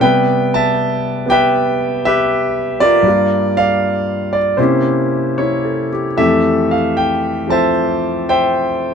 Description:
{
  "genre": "solo jazz",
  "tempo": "78 BPM",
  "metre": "4/4",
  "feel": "swing 69% on 8ths, rubato",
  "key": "C major",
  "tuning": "A4 = 440 Hz",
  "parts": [
    { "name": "clear concert grand piano", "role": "solo", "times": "0.0-8.9 s", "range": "F2 to A5", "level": "-13 LUFS", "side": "equal", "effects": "none" }
  ],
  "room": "light reverb",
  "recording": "band playing live in one room",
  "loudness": "-13 LUFS",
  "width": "side -6 dB against mid",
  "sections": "0.0-6.2 A section; 6.2-8.9 B section",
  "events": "none",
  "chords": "0.0 Cmaj7; 3.1 Gm7; 4.6 C7b9; 6.2 Fmaj9"
}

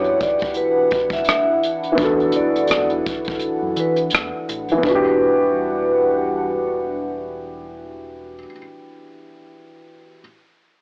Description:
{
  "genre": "lo-fi hip hop",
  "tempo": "84 BPM",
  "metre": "4/4",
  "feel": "swing 58% on 16ths",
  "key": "E minor",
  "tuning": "A4 = 440 Hz",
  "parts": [
    { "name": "vibraphone with soft mallets", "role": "melody", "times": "0.0-7.0 s", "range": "B4 to E5", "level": "-20 LUFS", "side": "equal", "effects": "low-pass filter, plate reverb" },
    { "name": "felt-muted upright piano", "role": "accompaniment", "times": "0.0-10.2 s", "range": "E3 to A4", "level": "-21 LUFS", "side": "equal", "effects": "cassette tape, low-pass filter, plate reverb" },
    { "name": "dark analog pad", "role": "sustained chords", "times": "0.0-8.5 s", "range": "E3 to F#5", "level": "-27 LUFS", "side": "equal", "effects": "chorus, phaser, low-pass filter" },
    { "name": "deep dub fingered electric bass", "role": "bass", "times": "0.0-8.5 s", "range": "E1 to E3", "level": "-34 LUFS", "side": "equal", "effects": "tube saturation" },
    { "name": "jazz brush drum kit", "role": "drums", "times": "0.0-5.0 s", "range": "hi-hat, kick drum, rim click", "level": "-23 LUFS", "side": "equal", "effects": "none" }
  ],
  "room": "moderate studio ambience, RT60 0.5 s",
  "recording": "dry, gritty hardware recording, cassette tape, AM radio sound",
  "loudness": "-16 LUFS",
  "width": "side -31 dB against mid",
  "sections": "0.0-4.8 A section; 4.8-7.7 B section",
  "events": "break 3.4-4.8",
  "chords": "0.0 Em9"
}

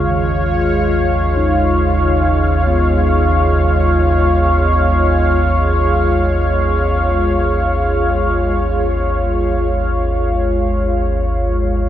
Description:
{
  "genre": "dark ambient drone",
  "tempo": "free time",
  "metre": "none",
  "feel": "none",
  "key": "unclear",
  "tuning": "A4 = 440 Hz",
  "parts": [
    { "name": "sweeping resonant pad", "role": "sustained chords", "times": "0.0-11.9 s", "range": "G#3 to E#5", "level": "-16 LUFS", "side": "equal", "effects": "chorus" },
    { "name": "bronze singing bowl", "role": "arpeggios", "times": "0.0-10.5 s", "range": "C#3 to D#4", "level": "-26 LUFS", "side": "left 1 dB", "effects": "analog delay" },
    { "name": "deep rumbling drone", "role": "drone", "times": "0.0-11.9 s", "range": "G#1 to D#2", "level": "-16 LUFS", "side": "equal", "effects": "built-in reverb, lush chorus" }
  ],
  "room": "wet lush hall reverb, RT60 2.7 s",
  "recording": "dreamy mix soaked in reverb, cassette tape",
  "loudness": "-13 LUFS",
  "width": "side -11 dB against mid",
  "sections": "0.0-11.9 A section",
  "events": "fade-out on singing bowl 0.0-11.9; filter sweep on synth drone 0.0-11.9",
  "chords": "0.0 C#"
}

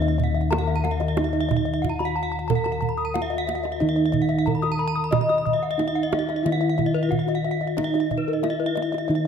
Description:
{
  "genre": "Balinese gamelan",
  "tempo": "91 BPM",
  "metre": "4/4",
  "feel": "straight",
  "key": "Eb pelog",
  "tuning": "A4 = 440 Hz",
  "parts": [
    { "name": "gamelan-type bronze metallophone", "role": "melody", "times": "0.0-9.3 s", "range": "Eb4 to Eb5", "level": "-26 LUFS", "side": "equal", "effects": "none" },
    { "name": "gamelan-type bronze metallophone", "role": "arpeggios", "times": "0.0-9.3 s", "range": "Bb4-45c to Eb6", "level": "-29 LUFS", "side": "left 7 dB", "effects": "none" },
    { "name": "gamelan-type bossed gongs", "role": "bass", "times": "0.0-9.3 s", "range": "Eb2 to Eb5", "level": "-26 LUFS", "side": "left 1 dB", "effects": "none" },
    { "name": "gamelan-type bronze metallophone", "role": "arpeggios", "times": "0.1-9.2 s", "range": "Cb5-40c to Cb6-40c", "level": "-31 LUFS", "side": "right 4 dB", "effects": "none" },
    { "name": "kendang", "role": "percussion", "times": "0.2-9.2 s", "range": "none", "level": "-29 LUFS", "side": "right 7 dB", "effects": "none" }
  ],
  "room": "moderate concert hall reverb, RT60 2.0 s",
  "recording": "close, detailed microphones",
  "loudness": "-21 LUFS",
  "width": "side -7 dB against mid",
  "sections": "0.0-9.3 A section",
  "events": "none",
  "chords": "none"
}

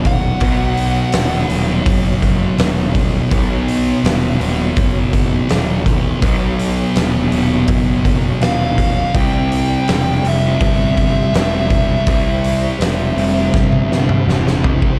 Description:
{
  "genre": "stoner and doom metal",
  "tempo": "82 BPM",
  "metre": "4/4",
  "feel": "straight",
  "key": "unclear",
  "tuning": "A4 = 441 Hz",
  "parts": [
    { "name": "mellow tonewheel organ", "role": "sustained chords", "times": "0.0-15.0 s", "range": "B3 to D5", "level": "-31 LUFS", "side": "equal", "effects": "none" },
    { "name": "thick fuzz guitar", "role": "riff", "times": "0.0-15.0 s", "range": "B2 to C4", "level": "-22 LUFS", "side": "equal", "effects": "distortion" },
    { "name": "thick fuzz guitar", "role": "riff", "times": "0.0-15.0 s", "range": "B2 to C4", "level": "-23 LUFS", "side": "equal", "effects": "distortion" },
    { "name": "fuzz picked electric bass", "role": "bass", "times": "0.0-14.9 s", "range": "D#1 to C2", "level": "-22 LUFS", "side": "equal", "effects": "overdrive" },
    { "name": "oversized low-tuned drum kit", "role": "drums", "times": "0.0-15.0 s", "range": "hi-hat, kick drum, snare drum, toms", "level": "-20 LUFS", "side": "equal", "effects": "none" },
    { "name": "fuzz lead guitar", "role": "melody", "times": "0.1-1.5, 8.4-14.2 s", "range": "E5 to G5", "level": "-24 LUFS", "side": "equal", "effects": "distortion, analog delay" }
  ],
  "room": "light reverb",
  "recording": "dark, warm production",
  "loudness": "-16 LUFS",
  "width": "mono",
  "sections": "0.0-15.0 A section",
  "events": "drum fill 13.5-15.0",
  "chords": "0.0 B; 9.1 C"
}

